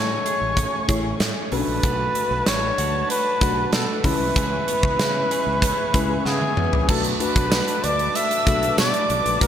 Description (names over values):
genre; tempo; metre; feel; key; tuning
1980s-style pop; 95 BPM; 4/4; straight; B dorian; A4 = 440 Hz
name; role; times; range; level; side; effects
warm flugelhorn; melody; 0.0-9.5 s; G#4 to E5; -23 LUFS; equal; digital delay
mellow FM electric piano; accompaniment; 0.0-9.5 s; G#3 to B5; -28 LUFS; left 3 dB; chorus
lush unison pad; sustained chords; 0.0-9.5 s; A3 to D6; -32 LUFS; equal; chorus
direct-recorded clean electric guitar; riff; 0.0-9.5 s; E3 to G#4; -33 LUFS; right 5 dB; lush chorus
fretless electric bass; bass; 0.0-9.5 s; A1 to C#3; -28 LUFS; equal; none
huge arena drum kit; drums; 0.3-9.5 s; crash cymbal, hi-hat, kick drum, snare drum, tambourine, toms; -23 LUFS; equal; gated reverb
dark studio violin section; second line; 6.3-9.5 s; G#5 to E6; -32 LUFS; left 1 dB; digital delay
room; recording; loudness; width
moderate plate reverb, RT60 2.0 s, studio reverb; bright 1980s-style digital production; -19 LUFS; side -9 dB against mid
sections
0.0-6.9 A section; 6.9-9.5 B section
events
FM electric piano fill 5.6-6.9; drum fill 6.3-6.9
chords
0.0 Amaj7; 1.5 Bm7; 4.0 C#m7; 6.9 Bm7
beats
0.57 1.20 | 1.83 2.47 3.10 3.73 | 4.36 4.99 5.62 6.25 | 6.89 7.52 8.15 8.78 | 9.41